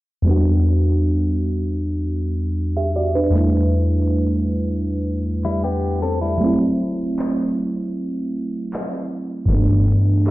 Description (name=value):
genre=contemporary R&B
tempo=78 BPM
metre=4/4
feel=straight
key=E minor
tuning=A4 = 445 Hz
part: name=mellow FM electric piano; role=accompaniment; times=0.2-10.3 s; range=E2 to E5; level=-18 LUFS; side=equal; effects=chorus
part: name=direct-recorded clean electric guitar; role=arpeggios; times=5.4-6.6 s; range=G3 to A4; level=-23 LUFS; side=left 3 dB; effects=tape echo
part: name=booming analog drum machine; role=drums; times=7.2-10.3 s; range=handclaps, kick drum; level=-25 LUFS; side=left 1 dB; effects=none
room=light reverb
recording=played on a big sound system in a bare room, large studio reverb, low-pass filter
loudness=-18 LUFS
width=side -18 dB against mid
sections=0.3-10.3 A section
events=filter sweep 0.3-10.3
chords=0.3 Em9; 3.3 A9sus4/E; 6.4 F#m7b5; 9.5 G6